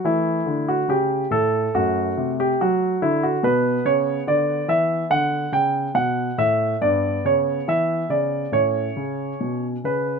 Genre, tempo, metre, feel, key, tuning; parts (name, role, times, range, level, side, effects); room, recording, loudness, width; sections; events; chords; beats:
classical, baroque-style suite movement for grand piano; 70 BPM; 4/4; rubato; A4 = 439 Hz
warm concert grand piano; solo; 0.0-10.2 s; F#2 to G5; -19 LUFS; right 1 dB
light reverb; -19 LUFS; side -5 dB against mid
0.0-10.2 A section
0.1 A; 1.8 D/F#; 3.4 Bm; 6.8 Em/G; 8.5 Aadd9
| 0.05 0.91 1.76 2.61 | 3.44 4.27 5.10 5.95 | 6.81 7.67 8.53 9.40